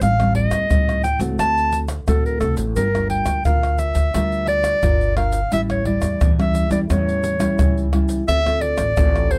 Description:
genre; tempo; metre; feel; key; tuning
samba and choro; 87 BPM; 4/4; straight; D minor; A4 = 440 Hz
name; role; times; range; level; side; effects
warm clarinet; melody; 0.0-9.4 s; A4 to A5; -23 LUFS; equal; none
nylon-string guitar; accompaniment; 0.0-9.4 s; A2 to Bb4; -26 LUFS; equal; none
upright bass; bass; 0.0-9.4 s; G1 to E2; -25 LUFS; equal; none
tube shaker, surdo, pandeiro and tamborim; percussion; 0.0-9.4 s; none; -24 LUFS; equal; none
room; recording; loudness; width
little or no reverb; close, detailed microphones; -19 LUFS; mono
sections
0.0-9.4 A section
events
none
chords
0.0 Am7b5; 1.4 D7; 2.8 Gm7; 5.5 A7; 8.3 Dm7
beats
| 0.01 0.70 1.39 2.08 | 2.76 3.45 4.14 4.83 | 5.52 6.21 6.90 7.59 | 8.28 8.97

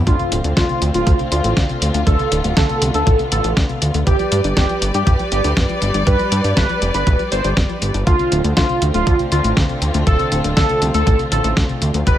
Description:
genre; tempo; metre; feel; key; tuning
italo disco; 120 BPM; 4/4; straight; D dorian; A4 = 440 Hz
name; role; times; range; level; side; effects
dark chamber string section; sustained chords; 0.0-12.2 s; D3 to D5; -23 LUFS; equal; none
soft round pluck; arpeggios; 0.0-12.2 s; C3 to D4; -26 LUFS; left 2 dB; chorus, cassette tape, tape echo
fat analog bass; bass; 0.0-12.2 s; D1 to G2; -20 LUFS; equal; none
wide unison lead; melody; 0.1-12.2 s; F4 to C5; -21 LUFS; right 1 dB; wide subtle chorus, tape echo
clean 12-bit digital drum machine; drums; 0.1-12.2 s; hi-hat, snare drum; -22 LUFS; equal; none
electronic kick drum; drums; 0.1-12.2 s; none; -17 LUFS; equal; none
room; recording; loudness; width
light reverb, digital ambience; none; -14 LUFS; side -11 dB against mid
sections
0.1-12.2 A section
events
none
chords
0.1 Dm7; 4.1 G; 8.1 Dm7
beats
| 0.07 0.57 1.07 1.57 | 2.07 2.57 3.07 3.57 | 4.07 4.57 5.07 5.57 | 6.07 6.57 7.07 7.57 | 8.07 8.57 9.07 9.57 | 10.07 10.57 11.07 11.57 | 12.07

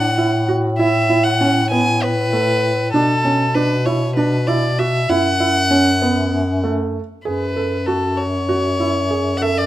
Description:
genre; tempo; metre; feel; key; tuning
contemporary instrumental, chamber music in an uneven meter; 195 BPM (eighths); 7/8; straight; F# minor; A4 = 444 Hz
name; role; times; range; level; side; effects
warm violin; melody; 0.0-9.7 s; A4 to G#5; -19 LUFS; left 1 dB; none
felt-muted upright piano; arpeggios; 0.0-9.6 s; A3 to A4; -20 LUFS; right 2 dB; none
breathy bass clarinet; bass; 0.0-9.7 s; F#2 to B2; -20 LUFS; left 1 dB; none
room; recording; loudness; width
light reverb; close, detailed microphones; -15 LUFS; side -14 dB against mid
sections
0.0-7.3 A section; 7.3-9.7 B section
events
none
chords
0.0 Asus2; 2.9 Bm7; 5.1 F#m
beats
0.18 0.48 | 0.79 1.10 1.41 1.71 2.02 2.33 2.63 | 2.94 3.25 3.56 3.87 4.17 4.48 4.79 | 5.09 5.40 5.71 6.02 6.33 6.64 6.94 | 7.25 7.56 7.87 8.18 8.49 8.79 9.10 | 9.41

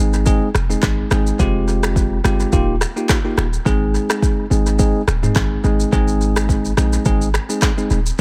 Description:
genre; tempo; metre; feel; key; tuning
afrobeats; 106 BPM; 4/4; swing 55% on 16ths; Ab major; A4 = 439 Hz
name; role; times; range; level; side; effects
bell-like tine electric piano; accompaniment; 0.0-8.2 s; Ab3 to Ab4; -23 LUFS; equal; none
warm 808-style bass; bass; 0.0-8.1 s; Eb1 to Bb1; -21 LUFS; equal; none
afro-pop drum kit; drums; 0.1-8.2 s; finger snaps, handclaps, kick drum, rim click, shaker, toms; -21 LUFS; equal; analog delay
room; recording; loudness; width
light reverb; echo-heavy mix; -17 LUFS; mono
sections
0.0-5.9 A section; 5.9-8.2 B section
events
none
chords
0.0 Ab; 1.4 Fmadd9; 2.5 Ebadd9; 3.7 Ab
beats
0.26 0.83 | 1.40 1.96 2.53 3.09 | 3.66 4.23 4.79 5.36 | 5.92 6.49 7.06 7.62 | 8.19

